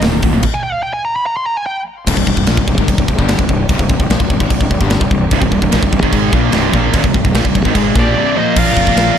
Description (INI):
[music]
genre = heavy metal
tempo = 148 BPM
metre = 4/4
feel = straight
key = C minor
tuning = A4 = 437 Hz
[part]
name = distorted electric guitar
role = riff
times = 0.0-9.2 s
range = C2 to Bb4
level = -20 LUFS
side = right 1 dB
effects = distortion
[part]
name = high-gain distorted guitar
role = riff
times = 0.0-0.4, 5.3-9.2 s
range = C2 to Bb4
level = -18 LUFS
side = right 12 dB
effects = distortion
[part]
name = sludgy distorted guitar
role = riff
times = 0.0-9.2 s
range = C2 to Bb3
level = -19 LUFS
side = left 11 dB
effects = overdrive
[part]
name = fuzz fingered electric bass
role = bass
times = 0.0-9.1 s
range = C1 to Bb1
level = -17 LUFS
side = equal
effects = overdrive
[part]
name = tight metal drum kit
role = drums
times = 0.0-9.1 s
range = china cymbal, crash cymbal, hi-hat, kick drum, snare drum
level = -16 LUFS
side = equal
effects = none
[part]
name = high-gain lead guitar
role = melody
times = 0.5-1.8, 8.0-9.2 s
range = D5 to C6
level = -18 LUFS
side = right 1 dB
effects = distortion, ping-pong delay
[part]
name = muted chamber string section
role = sustained chords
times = 2.1-8.5 s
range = C4 to D5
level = -27 LUFS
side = left 1 dB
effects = none
[part]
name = high-gain lead guitar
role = second line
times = 8.0-9.1 s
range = G4 to D5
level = -23 LUFS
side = left 2 dB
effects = distortion
[sound]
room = small room ambience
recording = dark, warm production, faint mains hum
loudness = -11 LUFS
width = side -8 dB against mid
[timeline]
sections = 0.0-2.1 A section; 2.1-8.6 B section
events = lead electric guitar solo 0.0-2.1; stop 0.4-2.1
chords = 0.0 Eb; 2.1 Cm; 8.6 Bb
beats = 0.03 | 0.44 0.84 1.25 1.66 | 2.06 2.47 2.88 3.29 | 3.69 4.10 4.50 4.91 | 5.32 5.72 6.13 6.54 | 6.94 7.35 7.76 8.16 | 8.57 8.98